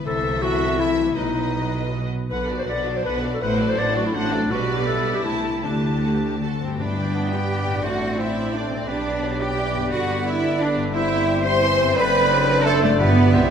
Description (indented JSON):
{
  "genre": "classical, dramatic, fast romantic movement for symphony orchestra",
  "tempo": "153-178 BPM",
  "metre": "3/4",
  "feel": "rubato",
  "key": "G major",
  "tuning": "A4 = 440 Hz",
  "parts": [
    { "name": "rich symphonic violin section", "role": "second line", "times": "0.0-13.5 s", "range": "B3 to C6", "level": "-31 LUFS", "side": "left 2 dB", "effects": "none" },
    { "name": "concert harp", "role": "arpeggios", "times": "0.0-13.5 s", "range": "F#2 to E5", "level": "-30 LUFS", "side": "left 7 dB", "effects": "none" },
    { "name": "rich symphonic violin section", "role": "melody", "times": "0.1-13.5 s", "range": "C5 to A5", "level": "-33 LUFS", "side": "left 3 dB", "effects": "none" },
    { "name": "warm clarinet", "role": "second line", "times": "0.1-13.5 s", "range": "A3 to D5", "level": "-26 LUFS", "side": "left 2 dB", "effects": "none" },
    { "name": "clear symphonic viola section", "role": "accompaniment", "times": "0.1-13.5 s", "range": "D3 to C5", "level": "-31 LUFS", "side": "right 2 dB", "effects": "none" },
    { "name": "clear symphonic double bass section", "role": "bass", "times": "0.1-13.5 s", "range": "F#1 to G2", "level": "-26 LUFS", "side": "right 2 dB", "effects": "none" },
    { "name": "rich symphonic cello section", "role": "bass", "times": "0.1-13.5 s", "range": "A2 to C5", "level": "-25 LUFS", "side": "right 3 dB", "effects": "none" },
    { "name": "clear oboe", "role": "second line", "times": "6.8-13.5 s", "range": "B4 to C5", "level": "-31 LUFS", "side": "right 3 dB", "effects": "none" },
    { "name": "flute section", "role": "second line", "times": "6.8-13.5 s", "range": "D5 to E5", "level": "-31 LUFS", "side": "left 1 dB", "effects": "none" },
    { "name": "mellow French horn section", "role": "sustained chords", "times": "6.8-13.5 s", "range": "B3 to E4", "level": "-29 LUFS", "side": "left 4 dB", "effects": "none" },
    { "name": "timpani", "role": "percussion", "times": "6.8-7.3, 13.0-13.3 s", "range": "G2", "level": "-26 LUFS", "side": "left 2 dB", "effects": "none" },
    { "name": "warm bassoon", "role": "accompaniment", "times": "7.1-13.5 s", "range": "D3 to C4", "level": "-30 LUFS", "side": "right 2 dB", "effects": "none" }
  ],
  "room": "wet recital hall reverb, RT60 1.5 s",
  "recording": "none",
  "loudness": "-19 LUFS",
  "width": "side -8 dB against mid",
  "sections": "0.0-6.8 A section; 6.8-13.5 B section",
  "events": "none",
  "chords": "0.1 Am/C; 1.2 B; 2.3 Bm; 3.4 D7/A; 4.5 G/B; 5.2 Am/C; 5.6 Dsus4; 6.4 D; 6.8 G; 7.8 D7/A; 8.9 G/B; 9.9 G; 10.9 C/G; 12.0 D7/F#; 13.0 G",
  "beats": "| 0.07 0.43 0.80 | 1.17 1.55 1.93 | 2.30 2.68 3.05 | 3.42 3.78 4.14 | 4.50 4.87 5.25 | 5.63 6.03 6.42 | 6.79 7.15 7.49 | 7.84 8.19 8.54 | 8.88 9.23 9.58 | 9.92 10.26 10.60 | 10.94 11.28 11.62 | 11.96 12.31 12.65 | 13.00 13.35"
}